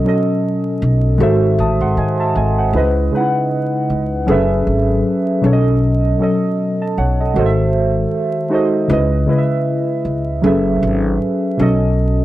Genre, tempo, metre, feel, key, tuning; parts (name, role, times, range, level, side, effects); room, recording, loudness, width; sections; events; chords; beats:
hip hop; 78 BPM; 4/4; swing 57% on 16ths; C# minor; A4 = 444 Hz
muted felt-like synth keys; accompaniment; 0.0-12.2 s; B2 to D#6; -15 LUFS; equal; chorus, low-pass filter
upright bass; bass; 0.8-12.2 s; F#1 to G#2; -17 LUFS; equal
moderate studio reverb, RT60 0.7 s; dark, warm production, vinyl crackle; -14 LUFS; side -15 dB against mid
0.0-12.2 A section
0.0 B7; 1.2 G#7b9b13; 2.7 C#m9; 4.3 F#m11; 5.4 B7; 7.4 G#7b9b13; 8.9 C#m9; 10.4 F#m11; 11.6 B7
0.43 1.20 1.97 | 2.74 3.51 4.28 5.05 | 5.82 6.58 7.35 8.12 | 8.89 9.66 10.43 11.20 | 11.97